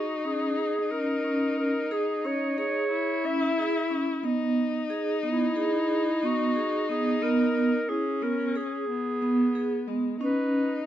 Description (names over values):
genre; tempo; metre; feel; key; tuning
contemporary instrumental, chamber music in an uneven meter; 180 BPM (eighths); 9/8; straight; unclear; A4 = 440 Hz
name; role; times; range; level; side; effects
warm clarinet; melody; 0.0-10.9 s; E4 to E5; -30 LUFS; right 1 dB; none
rich viola; second line; 0.0-10.9 s; G#3 to E4; -29 LUFS; left 3 dB; none
vibraphone with medium hard mallets; arpeggios; 0.0-10.7 s; B3 to G#4; -28 LUFS; right 2 dB; none
room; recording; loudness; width
light reverb; dark, warm production; -24 LUFS; side -11 dB against mid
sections
0.0-10.2 A section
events
none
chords
0.0 C#m; 4.2 E (rootless); 10.2 C#sus2